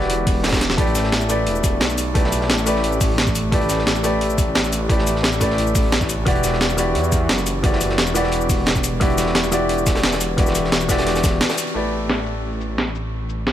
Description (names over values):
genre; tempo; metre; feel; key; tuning
liquid drum and bass; 175 BPM; 4/4; straight; unclear; A4 = 440 Hz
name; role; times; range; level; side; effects
warm grand piano; accompaniment; 0.0-13.5 s; E3 to D5; -22 LUFS; left 1 dB; ping-pong delay
swelling detuned saw bass; bass; 0.0-13.5 s; E1 to E2; -23 LUFS; equal; none
crunchy breakbeat drum kit; drums; 0.0-11.8 s; hi-hat, snare drum; -28 LUFS; equal; high-pass filter on hats, high-pass filter on snare, high-pass filter on room
breakbeat sampler-style drum kit; drums; 0.1-13.5 s; cabasa, hi-hat, snare drum; -22 LUFS; equal; overdrive, low-pass filter on hats, low-pass filter on snare, low-pass filter on perc, low-pass filter on room
electronic kick drum; drums; 0.3-11.3 s; none; -21 LUFS; equal; overdrive
room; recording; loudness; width
light reverb, small room ambience; none; -16 LUFS; side -11 dB against mid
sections
0.0-11.8 A section; 11.8-13.5 B section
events
drum fill 0.4-0.8; band accent 11.4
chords
0.0 Em9; 0.8 A7sus4; 6.3 Em9; 11.8 A7sus4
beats
0.10 0.44 | 0.78 1.13 1.47 1.81 | 2.15 2.50 2.84 3.18 | 3.53 3.87 4.21 4.55 | 4.90 5.24 5.58 5.93 | 6.27 6.61 6.96 7.30 | 7.64 7.98 8.33 8.67 | 9.01 9.36 9.70 10.04 | 10.38 10.73 11.07 11.41 | 11.76 12.10 12.44 12.78 | 13.13 13.47